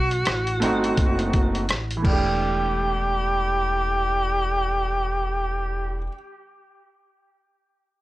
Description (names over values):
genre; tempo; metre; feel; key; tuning
hip hop, jazz-hop; 84 BPM; 4/4; swing 60% on 16ths; E minor; A4 = 440 Hz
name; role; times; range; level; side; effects
breathy tenor saxophone; melody; 0.0-6.0 s; F#4 to G4; -24 LUFS; equal; analog delay
upright bass; bass; 0.0-6.1 s; E1 to B1; -28 LUFS; equal; none
dusty soul sampler-style drum kit; drums; 0.1-2.2 s; crash cymbal, hi-hat, kick drum, rim click; -24 LUFS; equal; none
warm concert grand piano; accompaniment; 0.6-6.1 s; E3 to G4; -28 LUFS; right 2 dB; none
room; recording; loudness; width
light reverb; dry, gritty hardware recording; -21 LUFS; side -16 dB against mid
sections
0.0-2.4 A section; 2.4-5.3 B section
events
none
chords
0.0 B7b9; 1.7 N.C.; 2.0 Em7